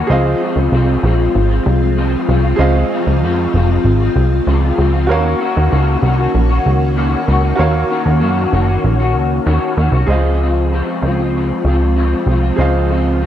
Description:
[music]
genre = indie pop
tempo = 96 BPM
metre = 4/4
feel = straight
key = Db major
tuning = A4 = 440 Hz
[part]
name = clear upright piano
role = accompaniment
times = 0.0-13.3 s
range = Gb4 to F5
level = -22 LUFS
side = right 4 dB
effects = cassette tape, plate reverb
[part]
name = electric guitar through a small old amp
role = accompaniment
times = 0.0-13.3 s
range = Db3 to Gb4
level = -19 LUFS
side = left 4 dB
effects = ensemble chorus, warbly pitch drift, plate reverb
[part]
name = ensemble organ-string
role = sustained chords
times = 0.0-13.3 s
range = Eb3 to Gb4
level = -20 LUFS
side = right 1 dB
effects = ensemble chorus, plate reverb
[part]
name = plucky analog bass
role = bass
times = 0.0-13.3 s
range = F1 to Gb2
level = -14 LUFS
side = equal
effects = none
[sound]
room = light reverb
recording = dark, warm production, tape saturation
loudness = -12 LUFS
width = side -11 dB against mid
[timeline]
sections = 0.0-10.1 A section; 10.1-13.3 B section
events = none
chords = 0.1 Dbmaj7; 5.1 Ebm7; 10.1 Dbmaj7

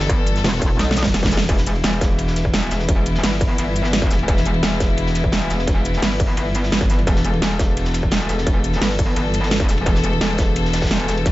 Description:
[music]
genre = dark technical drum and bass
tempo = 172 BPM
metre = 4/4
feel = straight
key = E minor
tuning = A4 = 442 Hz
[part]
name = rich chamber string section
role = sustained chords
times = 0.0-11.3 s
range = E3 to A4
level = -25 LUFS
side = left 2 dB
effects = vintage 12-bit sampler grit, sidechain pumping
[part]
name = metallic wobble bass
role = bass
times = 0.0-0.8 s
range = E1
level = -20 LUFS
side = equal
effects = chorus
[part]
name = crunchy breakbeat drum kit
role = drums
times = 0.0-11.3 s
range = hi-hat, ride cymbal, snare drum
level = -30 LUFS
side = equal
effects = high-pass filter on cymbals, high-pass filter on hats, high-pass filter on snare, high-pass filter on room
[part]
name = dubstep drum kit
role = drums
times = 0.0-11.3 s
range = cabasa, hi-hat, snare drum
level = -22 LUFS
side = right 1 dB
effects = none
[part]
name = metallic wobble bass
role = bass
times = 0.1-11.3 s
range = E1 to B1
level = -21 LUFS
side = equal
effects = chorus, overdrive
[part]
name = electronic kick drum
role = drums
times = 0.1-11.3 s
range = none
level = -20 LUFS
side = equal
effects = distortion
[sound]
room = little or no reverb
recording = nothing above 7.8 kHz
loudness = -16 LUFS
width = side -16 dB against mid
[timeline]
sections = 0.0-1.5 A section; 1.5-11.3 A section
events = drop 0.0-1.5, 1.5-11.3; drum fill 0.8-1.5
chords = 0.0 Em

